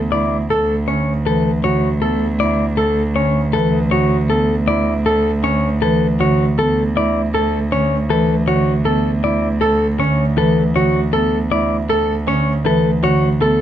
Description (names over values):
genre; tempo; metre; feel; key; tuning
classical, minimalist pattern music; 158 BPM; 6/4; straight; D major; A4 = 439 Hz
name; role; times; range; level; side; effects
rich cello; bass; 0.0-13.6 s; D2; -19 LUFS; right 2 dB; none
clean electric guitar; melody; 0.1-13.6 s; A4 to D5; -20 LUFS; left 8 dB; none
clear grand piano; arpeggios; 0.1-13.6 s; C#4 to B4; -21 LUFS; right 6 dB; none
marimba with medium mallets; accompaniment; 0.9-13.6 s; D3 to B3; -20 LUFS; equal; none
room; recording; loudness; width
light reverb; close, detailed microphones; -14 LUFS; side -10 dB against mid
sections
0.0-13.6 A section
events
none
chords
0.0 Dmaj7sus2